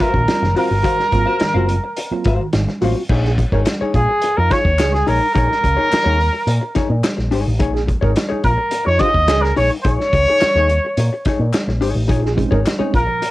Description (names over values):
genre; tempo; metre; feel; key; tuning
funk; 107 BPM; 4/4; straight; Bb minor; A4 = 440 Hz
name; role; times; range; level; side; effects
warm trumpet; melody; 0.0-13.3 s; Ab4 to Eb5; -17 LUFS; equal; cassette tape
vintage hollow-body jazz guitar; accompaniment; 0.0-13.3 s; Eb4 to F5; -22 LUFS; left 5 dB; cassette tape
vintage drum kit; drums; 0.0-13.3 s; crash cymbal, hi-hat, kick drum, snare drum; -21 LUFS; equal; cassette tape
mellow reed electric piano; stabs; 0.1-3.0, 12.1-13.2 s; Ab2 to F4; -24 LUFS; right 5 dB; fast tremolo, cassette tape
picked electric bass with an envelope filter; bass; 0.1-13.1 s; Gb1 to Bb2; -18 LUFS; equal; none
breathy trombone; second line; 3.2-13.0 s; Eb4 to Bb4; -25 LUFS; right 6 dB; cassette tape
group handclap; percussion; 3.7-12.8 s; none; -30 LUFS; left 7 dB; none
room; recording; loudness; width
light reverb; home recording on cassette; -14 LUFS; side -17 dB against mid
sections
0.0-3.1 A section; 3.1-13.3 B section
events
none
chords
0.0 Ab13; 3.1 Bbm11